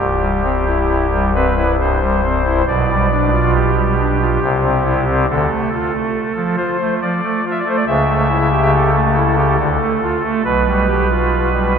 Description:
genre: classical, chorale-style piece for pipe organ.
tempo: 69 BPM.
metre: 3/4.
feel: rubato.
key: C major.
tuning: A4 = 442 Hz.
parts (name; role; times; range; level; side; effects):
pipe organ, soft reed; solo; 0.0-11.8 s; C1 to E5; -14 LUFS; equal; none.
room: wet church reverb, RT60 3.4 s.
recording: dark, warm production.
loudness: -14 LUFS.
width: side -7 dB against mid.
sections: 0.0-11.8 A section.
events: none.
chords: 0.0 C; 2.7 G7/B; 4.4 C; 5.3 Dm; 7.9 A7/C#; 9.6 Dm; 10.5 G7/B.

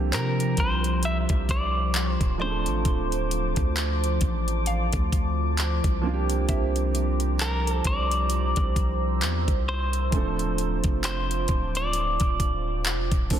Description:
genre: contemporary R&B.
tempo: 66 BPM.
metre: 4/4.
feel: swing 58% on 16ths.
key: D minor.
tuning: A4 = 440 Hz.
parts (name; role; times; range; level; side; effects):
warm grand piano; accompaniment; 0.0-13.4 s; E3 to A4; -33 LUFS; right 9 dB; none.
deep dark ambient pad; sustained chords; 0.0-13.4 s; F3 to E6; -31 LUFS; equal; chorus, built-in reverb, sidechain pumping.
long sustained 808-style bass; bass; 0.0-13.4 s; D1 to C3; -27 LUFS; equal; none.
clean electric guitar; melody; 0.1-13.3 s; Bb4 to E5; -30 LUFS; left 2 dB; spring reverb, tape echo.
trap drum kit; drums; 0.1-13.4 s; handclaps, hi-hat, kick drum; -26 LUFS; equal; none.
mallet-like synth pluck; texture; 0.1-9.1 s; C5 to F5; -39 LUFS; left 2 dB; chorus, tape echo.
room: little or no reverb.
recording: dense, heavily limited modern master.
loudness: -22 LUFS.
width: side -10 dB against mid.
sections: 0.0-13.4 A section.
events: none.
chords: 0.0 C9sus4; 2.4 Dm7; 6.0 C9sus4; 10.1 Dm7.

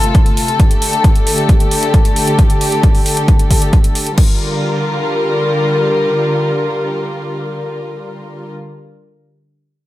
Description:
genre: uplifting trance.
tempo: 134 BPM.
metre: 4/4.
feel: straight.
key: G minor.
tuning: A4 = 440 Hz.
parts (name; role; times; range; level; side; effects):
dark studio string section; sustained chords; 0.0-8.5 s; C3 to Bb4; -16 LUFS; left 1 dB; sidechain pumping.
big-room dance drum kit; drums; 0.0-4.3 s; crash cymbal, hi-hat; -22 LUFS; right 2 dB; overdrive.
electronic kick drum; drums; 0.1-4.3 s; none; -11 LUFS; equal; none.
room: little or no reverb.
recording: none.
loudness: -11 LUFS.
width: side -15 dB against mid.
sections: 0.0-4.2 A section; 4.2-7.8 B section.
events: none.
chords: 0.0 F; 0.6 Dsus4; 4.2 Gm7.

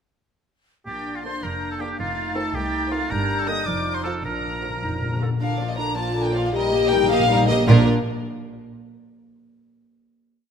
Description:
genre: quick classical-period movement for symphony orchestra.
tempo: 106 BPM (dotted quarters).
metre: 6/8.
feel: straight.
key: Bb major.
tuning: A4 = 444 Hz.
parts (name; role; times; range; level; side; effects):
warm chamber violin section; melody; 0.9-7.9 s; Bb4 to Eb6; -27 LUFS; left 3 dB; none.
clear oboe; second line; 0.9-5.2 s; F4 to Eb5; -30 LUFS; right 1 dB; none.
mellow large flute ensemble; second line; 0.9-5.2 s; F6 to A6; -32 LUFS; equal; none.
warm clarinet; second line; 0.9-5.3 s; D4 to A4; -34 LUFS; right 2 dB; none.
mellow French horn section; sustained chords; 0.9-7.8 s; F3 to G4; -27 LUFS; left 6 dB; none.
dark chamber cello section; bass; 0.9-7.9 s; C2 to Bb2; -27 LUFS; right 2 dB; none.
rich studio double bass section; bass; 0.9-7.9 s; F1 to C2; -26 LUFS; right 2 dB; none.
warm chamber violin section; second line; 1.2-7.9 s; Bb3 to Eb5; -30 LUFS; right 2 dB; none.
dark studio viola section; accompaniment; 1.2-7.9 s; D3 to G4; -27 LUFS; right 2 dB; none.
timpani; percussion; 4.2-7.8 s; Bb2; -27 LUFS; left 1 dB; none.
room: moderate scoring stage reverb, RT60 1.8 s.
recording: none.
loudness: -20 LUFS.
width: side -7 dB against mid.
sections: 0.9-5.4 A section; 5.4-7.7 coda; 7.7-8.8 final chord.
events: timpani fill 4.2-5.4, 6.5-7.7.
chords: 0.9 Bb; 2.0 F7; 3.1 Gm; 3.7 F5; 4.2 Bb; 6.5 Eb/Bb; 7.7 Bb.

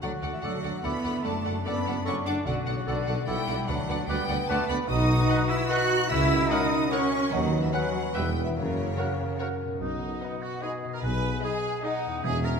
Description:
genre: cinematic, playful, whimsical film cue.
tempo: 148 BPM.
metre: 3/4.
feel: straight.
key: D major, B major from 4.9 s.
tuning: A4 = 440 Hz.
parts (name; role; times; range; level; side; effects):
warm studio violin section; melody; 0.0-12.1 s; C#5 to F#5; -39 LUFS; left 6 dB; none.
hollow concert flute; second line; 0.0-12.6 s; C#5 to F#6; -36 LUFS; left 2 dB; none.
rich studio violin section; second line; 0.0-12.6 s; D#4 to F#6; -36 LUFS; left 2 dB; none.
rich studio viola section; accompaniment; 0.0-12.1 s; D#4 to D#5; -40 LUFS; right 2 dB; none.
warm bassoon; accompaniment; 0.0-12.0 s; G#3 to F#4; -35 LUFS; right 1 dB; none.
concert harp; arpeggios; 0.0-12.6 s; E2 to D#5; -36 LUFS; left 6 dB; none.
dark studio double bass section; bass; 0.0-12.6 s; E1 to F#2; -32 LUFS; right 1 dB; none.
mellow tuba; bass; 0.0-12.6 s; E1 to D#2; -34 LUFS; right 2 dB; none.
warm studio cello section; bass; 0.0-12.6 s; E2 to F#4; -30 LUFS; right 3 dB; none.
mellow oboe; second line; 0.4-12.6 s; D#4 to F#5; -39 LUFS; right 3 dB; none.
warm clarinet; second line; 0.4-12.0 s; A4 to D#5; -38 LUFS; left 2 dB; none.
warm French horn section; sustained chords; 0.4-12.6 s; B3 to D5; -36 LUFS; left 4 dB; none.
room: wet scoring stage reverb, RT60 1.6 s.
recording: minimal, uncompressed stereo recording.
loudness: -24 LUFS.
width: side -6 dB against mid.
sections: 0.0-9.8 A section; 9.8-12.6 B section.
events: none.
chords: 0.0 D; 1.2 D/F#; 2.5 Bm7; 3.7 Bm/D; 4.9 B; 6.1 F#7/C#; 7.3 B/D#; 8.1 Em; 8.6 F#; 9.8 B; 11.0 G#m/B.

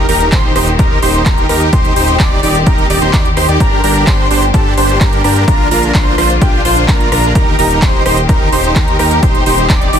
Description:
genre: EDM, festival progressive house.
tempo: 128 BPM.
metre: 4/4.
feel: straight.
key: unclear.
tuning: A4 = 440 Hz.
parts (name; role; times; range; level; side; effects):
clear studio string section; sustained chords; 0.0-10.0 s; D3 to G4; -21 LUFS; left 4 dB; sidechain pumping.
wide unison lead; arpeggios; 0.0-10.0 s; G5 to D6; -17 LUFS; equal; wide subtle chorus, sidechain pumping, digital delay.
dense compressed supersaw; riff; 0.0-10.0 s; D4 to D5; -15 LUFS; right 1 dB; sidechain pumping, digital delay.
fat analog bass; bass; 0.0-10.0 s; Eb1 to G2; -17 LUFS; equal; sidechain pumping.
big-room dance drum kit; drums; 0.1-10.0 s; handclaps, hi-hat, rim click; -20 LUFS; right 1 dB; overdrive.
electronic kick drum; drums; 0.3-9.8 s; none; -13 LUFS; equal; overdrive.
room: light reverb, digital ambience.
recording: dense, heavily limited modern master.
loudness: -9 LUFS.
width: side -8 dB against mid.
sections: 0.0-10.0 A section.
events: none.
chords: 0.0 Eb; 1.7 Cm/Eb; 3.6 Gm; 5.5 Bb; 7.4 Eb; 9.2 Cm/Eb.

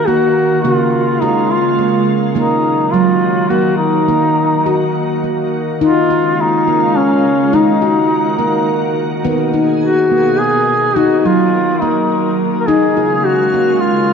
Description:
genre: world meditative, meditative tuned percussion.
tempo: 105 BPM.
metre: 3/4.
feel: straight.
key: Eb minor.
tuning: A4 = 443 Hz.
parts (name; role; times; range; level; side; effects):
mellow duduk; melody; 0.0-14.1 s; Db4 to Bb4; -15 LUFS; left 1 dB; shimmer reverb, diffuse ambient delay.
soft additive organ-like pad; sustained chords; 0.0-14.1 s; Cb3 to F5; -18 LUFS; equal; ensemble chorus, built-in reverb, shimmer reverb.
handpan; arpeggios; 0.0-14.1 s; Db3 to Gb4; -16 LUFS; equal; shimmer reverb.
room: wet echo chamber reverb, RT60 2.1 s.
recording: worn, warbling old tape, cassette tape, warbly pitch drift.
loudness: -11 LUFS.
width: side -6 dB against mid.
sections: 0.0-5.8 A section; 5.8-14.1 B section.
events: none.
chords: 0.0 Ebm; 0.6 Db; 2.4 Ebm; 5.8 Db; 7.5 Ebm; 9.2 Abm; 11.0 Ebm; 12.7 Db.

